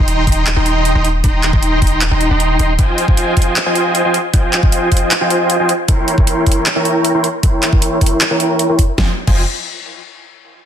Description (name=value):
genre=future bass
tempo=155 BPM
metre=4/4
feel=half-time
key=F minor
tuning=A4 = 440 Hz
part: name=dense compressed supersaw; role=riff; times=0.0-9.4 s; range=Eb4 to C6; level=-15 LUFS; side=equal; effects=sidechain pumping, low-pass filter, ping-pong delay
part: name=warm 808-style bass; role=bass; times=0.0-2.8, 9.0-9.5 s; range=Eb1 to F1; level=-16 LUFS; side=equal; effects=sidechain pumping
part: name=dubstep drum kit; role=drums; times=0.1-9.3 s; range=crash cymbal, handclaps, hi-hat, snare drum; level=-18 LUFS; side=equal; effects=none
part: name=electronic kick drum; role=drums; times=0.3-9.3 s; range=none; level=-13 LUFS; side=equal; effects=none
room=light reverb, digital ambience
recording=dense, heavily limited modern master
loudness=-12 LUFS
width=side -9 dB against mid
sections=0.0-9.0 A section; 9.0-10.5 B section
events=filter sweep on supersaw synth 0.0-9.0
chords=0.0 Cm7/Eb; 2.8 Fm7; 5.9 C7b9/E; 9.0 Fm7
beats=0.08 0.47 0.85 | 1.24 1.63 2.01 2.40 | 2.79 3.17 3.56 3.95 | 4.34 4.72 5.11 5.50 | 5.88 6.27 6.66 7.04 | 7.43 7.82 8.21 8.59 | 8.98 9.37